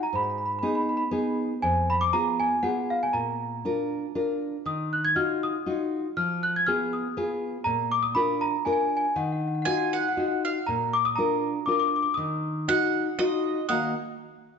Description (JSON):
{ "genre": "italian folk, Italian serenade", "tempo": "120 BPM", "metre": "3/4", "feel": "swing 54% on 8ths", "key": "Eb harmonic minor", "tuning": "A4 = 439 Hz", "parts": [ { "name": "celesta", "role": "melody", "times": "0.0-13.9 s", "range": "F5 to Ab6", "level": "-26 LUFS", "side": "equal", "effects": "none" }, { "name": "nylon-string guitar", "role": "accompaniment", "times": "0.0-14.0 s", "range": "F2 to Bb5", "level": "-28 LUFS", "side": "left 2 dB", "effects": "none" }, { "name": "bowl-back mandolin", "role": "second line", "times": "9.7-13.9 s", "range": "Eb5 to Ab5", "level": "-28 LUFS", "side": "right 8 dB", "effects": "none" } ], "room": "moderate recital hall reverb, RT60 1.6 s", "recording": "nothing above 7.7 kHz", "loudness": "-24 LUFS", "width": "side -6 dB against mid", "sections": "0.0-10.7 A section; 10.7-13.7 B section", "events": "none", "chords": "0.1 Abm; 1.6 Fdim; 3.1 Bb; 4.7 Ebmadd9; 6.2 Fdim; 7.7 Bb; 9.2 Ebmadd9; 10.7 Bb; 12.2 Ebmadd9" }